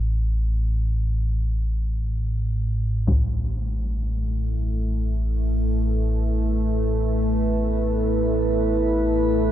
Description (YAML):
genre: dark ambient drone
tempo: free time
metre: none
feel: none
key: unclear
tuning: A4 = 436 Hz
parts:
  - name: deep rumbling drone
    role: drone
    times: 0.0-9.5 s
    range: A1 to A2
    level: -23 LUFS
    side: equal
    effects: built-in reverb
  - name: deep dark ambient pad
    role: sustained chords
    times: 3.6-9.5 s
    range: A3 to B4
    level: -24 LUFS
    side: equal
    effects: chorus, built-in reverb, shimmer reverb
  - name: taiko ensemble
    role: percussion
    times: 3.1-3.3 s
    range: none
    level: -26 LUFS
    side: left 1 dB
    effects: low-pass filter on perc
room: moderate huge ambient reverb, RT60 7.1 s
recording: dark, warm production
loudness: -21 LUFS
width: side -11 dB against mid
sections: 0.0-3.1 A section; 3.1-9.5 B section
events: none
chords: 0.0 N.C.; 3.1 A5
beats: free time